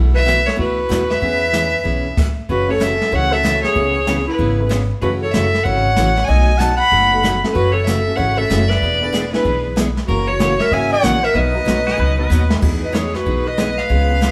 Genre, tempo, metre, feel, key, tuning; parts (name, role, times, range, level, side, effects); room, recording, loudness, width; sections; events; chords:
country, western swing; 189 BPM; 4/4; swing 64% on 8ths; E major; A4 = 440 Hz
picked steel-string acoustic guitar; accompaniment; 0.0-14.3 s; B2 to G#4; -26 LUFS; equal
upright bass; bass; 0.0-14.3 s; E1 to F#2; -22 LUFS; equal
rich fiddle; melody; 0.1-14.3 s; A#4 to B5; -21 LUFS; equal
breathy clarinet; second line; 0.2-14.3 s; E4 to F#5; -24 LUFS; equal
jazz brush drum kit; drums; 0.3-14.3 s; brushed snare drum, crash cymbal, hi-hat, kick drum, snare drum; -24 LUFS; equal
honky-tonk upright piano; accompaniment; 1.2-9.4, 11.5-14.2 s; F#3 to B4; -30 LUFS; equal
pedal steel guitar; second line; 11.9-12.6 s; G#4 to B4; -28 LUFS; equal
wet stone room reverb, RT60 1.1 s; band playing live in one room; -17 LUFS; mono
0.0-2.5 A section; 2.5-12.6 B section; 12.6-14.3 A section
drum fill 12.3-12.6
0.0 B7sus4; 1.2 E6; 2.5 F#m7; 3.8 C#m7; 5.0 F#m7; 6.3 B7; 7.6 F#m7; 8.8 E7; 10.1 F#7; 11.4 B; 12.6 Emaj9